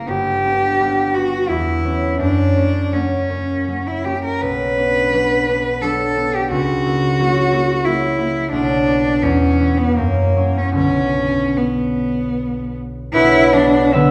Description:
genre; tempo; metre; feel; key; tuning
classical, romantic duo for cello and harp; 72-91 BPM; 3/4; rubato; B minor; A4 = 439 Hz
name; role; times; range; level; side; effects
rich cello; melody; 0.0-14.1 s; A#3 to B4; -20 LUFS; equal; none
concert harp; accompaniment; 0.0-14.1 s; F#1 to E5; -20 LUFS; equal; none
room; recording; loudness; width
wet recital hall reverb, RT60 1.5 s; heard from further back in the room; -17 LUFS; mono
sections
0.0-13.1 A section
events
none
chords
0.1 Gmaj7; 1.5 C#m7b5/E; 2.2 F#; 4.4 Bm; 6.5 F#7/C#; 8.5 Bm; 9.2 E5; 10.0 F#7; 10.8 Bm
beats
| 0.09 0.79 1.49 | 2.21 2.94 3.68 | 4.43 5.14 5.83 | 6.52 7.20 7.87 | 8.53 9.23 9.97 | 10.76 11.56 12.36 | 13.14 13.94

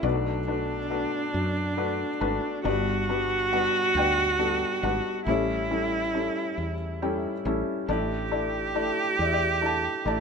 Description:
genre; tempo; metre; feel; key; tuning
acoustic folk-pop ballad; 46 BPM (dotted quarters); 6/8; straight; unclear; A4 = 440 Hz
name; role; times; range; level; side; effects
felt-muted upright piano; melody; 0.0-10.2 s; G1 to A5; -28 LUFS; left 3 dB; none
warm cello; second line; 0.0-10.2 s; D4 to G4; -27 LUFS; right 3 dB; none
woody fretless electric bass; bass; 0.0-10.2 s; G1 to F#2; -31 LUFS; equal; none
room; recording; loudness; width
light reverb; minimal, uncompressed stereo recording; -24 LUFS; side -5 dB against mid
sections
0.0-10.2 A section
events
felt piano fill 6.6-7.9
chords
0.0 Bm7; 2.7 G; 5.3 A7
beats
| 0.04 1.35 | 2.65 3.95 | 5.26 6.57 | 7.88 9.19

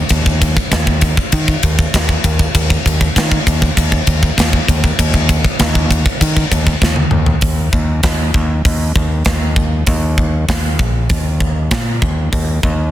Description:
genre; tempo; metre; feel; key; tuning
heavy metal; 98 BPM; 4/4; straight; unclear; A4 = 440 Hz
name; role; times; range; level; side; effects
growling fingered electric bass; bass; 0.0-12.9 s; Bb1 to Eb3; -16 LUFS; equal; overdrive
tight metal drum kit; drums; 0.1-12.8 s; hi-hat, kick drum, ride cymbal, snare drum, toms; -14 LUFS; equal; none
room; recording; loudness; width
little or no reverb; dense, heavily limited modern master; -12 LUFS; side -13 dB against mid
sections
0.0-7.4 A section; 7.4-12.9 B section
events
drum fill 6.8-7.4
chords
none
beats
| 0.11 0.72 1.33 1.94 | 2.55 3.16 3.77 4.38 | 4.99 5.60 6.21 6.82 | 7.43 8.04 8.66 9.27 | 9.88 10.49 11.10 11.71 | 12.33

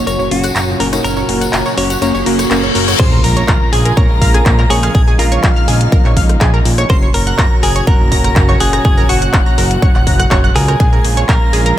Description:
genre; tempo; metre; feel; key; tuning
progressive house; 123 BPM; 4/4; straight; Bb minor; A4 = 440 Hz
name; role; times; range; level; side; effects
direct-recorded clean electric guitar; melody; 0.0-11.8 s; F4 to Db5; -21 LUFS; equal; ping-pong delay
dark chamber string section; sustained chords; 0.0-11.8 s; Bb2 to Gb4; -21 LUFS; right 1 dB; sidechain pumping, low-pass filter
chorused polysynth; stabs; 0.0-2.9 s; Bb3 to Gb4; -18 LUFS; left 1 dB; sidechain pumping, ping-pong delay
fat analog bass; bass; 0.0-11.7 s; Gb1 to Db2; -17 LUFS; equal; sidechain pumping
riser, reverse cymbal and impact; sound effects; 0.7-4.9 s; none; -22 LUFS; left 2 dB; none
analog pluck; arpeggios; 0.1-11.7 s; Ab4 to Bb6; -21 LUFS; right 1 dB; chorus, vintage 12-bit sampler grit, sidechain pumping, ping-pong delay
house drum kit; drums; 0.1-11.8 s; crash cymbal, handclaps, hi-hat, rim click; -20 LUFS; left 1 dB; none
tambourine; percussion; 0.1-3.0 s; none; -26 LUFS; left 3 dB; none
airy dreamy lead; second line; 3.0-11.8 s; F5 to C6; -22 LUFS; equal; chorus, sidechain pumping, ping-pong delay
electronic kick drum; drums; 3.0-11.4 s; none; -12 LUFS; equal; none
room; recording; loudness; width
light reverb; none; -10 LUFS; side -12 dB against mid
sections
0.0-3.0 A section; 3.0-11.8 B section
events
build-up 0.0-3.0; filter sweep on analog polysynth 0.0-3.0; riser 0.7-3.0; reverse cymbal 2.0-3.0; drop 3.0-11.8; impact 3.0-4.9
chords
0.0 Gb; 3.0 Bbm7; 6.9 Gb; 10.8 Bbm7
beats
0.07 0.56 | 1.04 1.53 2.02 2.51 | 3.00 3.48 3.97 4.46 | 4.95 5.43 5.92 6.41 | 6.90 7.39 7.87 8.36 | 8.85 9.34 9.82 10.31 | 10.80 11.29 11.78

